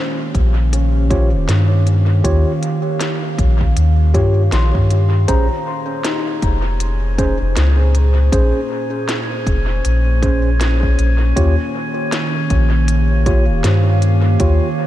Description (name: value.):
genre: ambient dub.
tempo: 79 BPM.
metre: 4/4.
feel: swing 59% on 16ths.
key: unclear.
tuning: A4 = 440 Hz.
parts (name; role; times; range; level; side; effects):
warbly tape-like pad; sustained chords; 0.0-14.9 s; Bb2 to F5; -23 LUFS; right 2 dB; chorus, built-in reverb, vintage 12-bit sampler grit.
felt-muted upright piano; arpeggios; 0.0-14.9 s; Db4 to C6; -28 LUFS; left 4 dB; ping-pong delay.
soft dub sub bass; bass; 0.3-14.6 s; Eb1 to G2; -14 LUFS; equal; none.
electronic kick drum; drums; 0.3-14.6 s; none; -19 LUFS; equal; overdrive.
organic electronic drum kit; drums; 0.3-14.6 s; hi-hat, snare drum; -27 LUFS; equal; dub echo.
mellow tine electric piano; stabs; 1.1-14.7 s; Db4 to Db5; -24 LUFS; right 1 dB; dub echo.
drifting glass-harmonics texture; texture; 6.0-14.9 s; Db4; -27 LUFS; left 3 dB; chorus, built-in reverb.
room: light reverb.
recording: none.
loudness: -13 LUFS.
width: side -14 dB against mid.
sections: 0.0-14.9 A section.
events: none.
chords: 0.0 Eb7; 5.3 Bbm7; 11.4 Eb7.